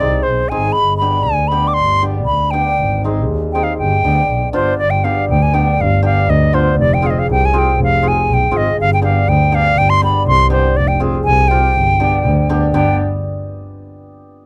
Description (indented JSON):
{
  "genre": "klezmer",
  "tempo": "120 BPM",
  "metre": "2/4",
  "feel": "straight",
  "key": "G phrygian dominant",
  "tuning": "A4 = 440 Hz",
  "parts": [
    { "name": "silver concert flute", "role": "melody", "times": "0.0-13.0 s", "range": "C5 to D6", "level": "-18 LUFS", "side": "equal", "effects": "none" },
    { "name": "hammered dulcimer", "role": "accompaniment", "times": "0.0-13.0 s", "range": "B3 to Ab4", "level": "-23 LUFS", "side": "equal", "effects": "none" },
    { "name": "warm double bass", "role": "bass", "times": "0.0-13.0 s", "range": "F1 to Eb2", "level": "-18 LUFS", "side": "equal", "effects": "none" }
  ],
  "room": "little or no reverb",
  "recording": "dry, close 1970s-style studio recording",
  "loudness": "-14 LUFS",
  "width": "mono",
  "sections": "0.0-4.8 A section; 4.8-12.7 B section",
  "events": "none",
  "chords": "0.0 Ab; 0.8 G; 2.8 Ab; 3.8 G; 6.8 Fm; 8.8 G; 10.8 Fm; 11.7 G"
}